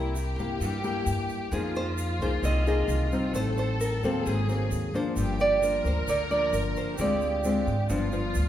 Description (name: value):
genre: bossa nova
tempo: 132 BPM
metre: 4/4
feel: straight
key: C minor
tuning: A4 = 440 Hz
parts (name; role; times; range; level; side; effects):
- nylon-string guitar; melody; 0.0-8.5 s; G4 to Eb5; -30 LUFS; right 3 dB; none
- warm symphonic violin section; second line; 0.0-8.5 s; E4 to Bb4; -34 LUFS; left 1 dB; none
- nylon-string guitar; accompaniment; 0.0-8.5 s; G2 to Ab4; -29 LUFS; left 2 dB; none
- upright bass; bass; 0.0-8.5 s; G1 to Ab2; -30 LUFS; equal; none
- egg shaker; percussion; 0.2-8.5 s; none; -45 LUFS; right 4 dB; none
room: wet recital hall reverb, RT60 1.2 s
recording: recorded in a church or concert hall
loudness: -24 LUFS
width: side -11 dB against mid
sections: 0.0-8.5 A section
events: none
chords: 0.0 C7; 1.5 Fm11; 3.3 Am7b5; 4.3 Ab9; 5.2 Gm7; 7.0 Dm7b5; 7.9 G7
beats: 0.15 0.61 1.06 | 1.52 1.98 2.43 2.89 | 3.34 3.80 4.25 4.71 | 5.17 5.62 6.08 6.53 | 6.99 7.44 7.90 8.36